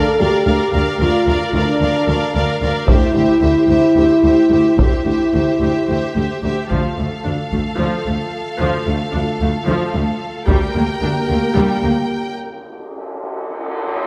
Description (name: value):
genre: cinematic, epic orchestral film score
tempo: 222 BPM (eighths)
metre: 7/8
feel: straight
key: D minor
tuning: A4 = 440 Hz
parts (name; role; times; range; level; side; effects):
- rich symphonic violin section; melody; 0.0-12.3 s; E5 to G5; -30 LUFS; equal; none
- warm symphonic violin section; second line; 0.0-12.4 s; A4 to D5; -29 LUFS; equal; none
- rich symphonic viola section; accompaniment; 0.0-11.9 s; F3 to Bb4; -25 LUFS; equal; none
- dark French horn section; sustained chords; 0.0-12.3 s; A3 to A4; -20 LUFS; equal; none
- rich symphonic cello section; bass; 0.2-11.9 s; D2; -25 LUFS; equal; none
- rich symphonic double bass section; bass; 0.2-11.9 s; D2; -25 LUFS; equal; none
- solo taiko drums; drums; 2.9-11.5 s; none; -20 LUFS; equal; none
room: wet scoring stage reverb, RT60 1.6 s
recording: none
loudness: -17 LUFS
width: mono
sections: 0.0-6.7 A section; 6.7-14.1 B section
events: break 12.4-14.1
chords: 0.0 Bb/D; 2.9 C/D; 6.7 Dm; 10.5 Gm/D; 12.4 N.C.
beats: 0.20 0.47 0.74 | 1.01 1.27 1.54 1.81 2.08 2.35 2.62 | 2.88 3.15 3.42 3.69 3.96 4.24 4.51 | 4.79 5.07 5.34 5.62 5.89 6.17 6.44 | 6.72 6.99 7.26 7.53 7.80 8.07 8.34 | 8.61 8.87 9.14 9.41 9.68 9.95 10.22 | 10.48 10.75 11.02 11.29 11.56 11.84 12.11 | 12.38